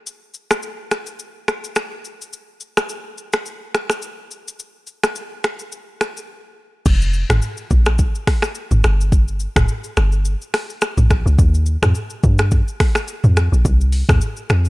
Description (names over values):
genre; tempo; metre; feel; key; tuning
afrobeats; 106 BPM; 4/4; swing 55% on 16ths; F minor; A4 = 440 Hz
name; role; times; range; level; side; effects
afro-pop drum kit; drums; 0.1-14.7 s; crash cymbal, finger snaps, hi-hat, kick drum, rim click, shaker, toms; -18 LUFS; equal; vintage 12-bit sampler grit
deep log drum bass; bass; 6.9-14.7 s; F1 to G2; -15 LUFS; equal; none
room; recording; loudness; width
digital ambience; none; -16 LUFS; side -21 dB against mid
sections
0.0-6.9 A section; 6.9-14.7 B section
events
break 6.3-6.9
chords
none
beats
| 0.07 0.63 1.20 1.76 | 2.33 2.90 3.46 4.03 | 4.59 5.16 5.73 6.29 | 6.86 7.42 7.99 8.56 | 9.12 9.69 10.25 10.82 | 11.39 11.95 12.52 13.08 | 13.65 14.22